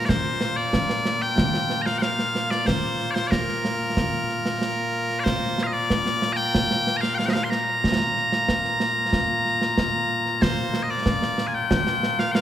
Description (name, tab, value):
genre	scottish traditional, Scottish pipe music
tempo	93 BPM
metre	4/4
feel	straight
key	Bb major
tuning	A4 = 439 Hz
part	loud bright bagpipes	melody	0.0-12.4 s	Bb2 to C6	-23 LUFS	left 1 dB	none
part	concert snare drum and concert bass drum	drums	0.1-12.4 s	none	-25 LUFS	right 1 dB	none
room	moderate concert hall reverb, RT60 2.3 s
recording	recorded in a church or concert hall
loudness	-21 LUFS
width	side -11 dB against mid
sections	0.1-10.4 A section; 10.4-12.4 A section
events	none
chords	none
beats	| 0.10 0.74 1.39 2.03 | 2.68 3.32 3.97 4.61 | 5.26 5.90 6.55 7.19 | 7.84 8.48 9.13 9.77 | 10.42 11.06 11.71 12.35